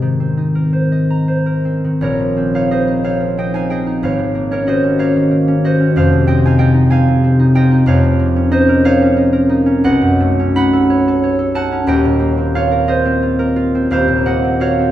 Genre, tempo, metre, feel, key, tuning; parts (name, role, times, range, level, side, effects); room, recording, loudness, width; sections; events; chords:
classical, solo harp piece; 61 BPM (dotted quarters); 6/8; uneven beats, rubato; Bb minor; A4 = 440 Hz
concert harp; solo; 0.0-14.9 s; Eb1 to B5; -12 LUFS; equal
wet scoring stage reverb, RT60 1.7 s; minimal, uncompressed stereo recording; -12 LUFS; side -12 dB against mid
0.0-2.0 A section; 2.0-14.9 B section
0.0 Abadd9; 2.0 Bbm11; 4.0 Ab9sus4; 5.9 Fm7; 7.9 Db69/F; 9.8 B9; 11.9 Eb69; 13.9 Ebm6